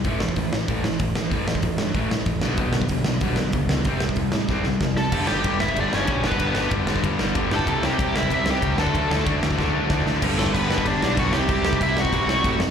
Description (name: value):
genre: punk rock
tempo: 189 BPM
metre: 4/4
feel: straight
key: unclear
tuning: A4 = 440 Hz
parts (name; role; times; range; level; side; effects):
- distorted electric guitar; riff; 0.0-12.6 s; G2 to G4; -28 LUFS; left 11 dB; distortion, slapback echo
- overdriven semi-hollow guitar; riff; 0.0-12.6 s; G2 to D4; -29 LUFS; right 12 dB; slapback echo
- fuzz picked electric bass; bass; 0.0-12.7 s; G1 to A2; -26 LUFS; equal; overdrive
- big rock drum kit; drums; 0.0-12.7 s; crash cymbal, hi-hat, kick drum, ride cymbal, snare drum; -25 LUFS; equal; none
- biting lead guitar; melody; 5.0-12.6 s; A3 to A5; -25 LUFS; equal; overdrive, slapback echo
- tight distorted guitar; riff; 5.1-12.6 s; G2 to D4; -28 LUFS; left 1 dB; distortion, slapback echo
room: little or no reverb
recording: live gig heard through the venue's PA, club reverb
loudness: -20 LUFS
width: side -7 dB against mid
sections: 0.0-5.1 A section; 5.1-10.2 B section; 10.2-12.7 C section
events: drum fill 4.5-5.1, 9.6-10.2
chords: 0.0 A5; 2.4 G/B; 3.9 C5; 5.1 G; 7.7 C; 8.8 D; 10.2 G; 11.3 C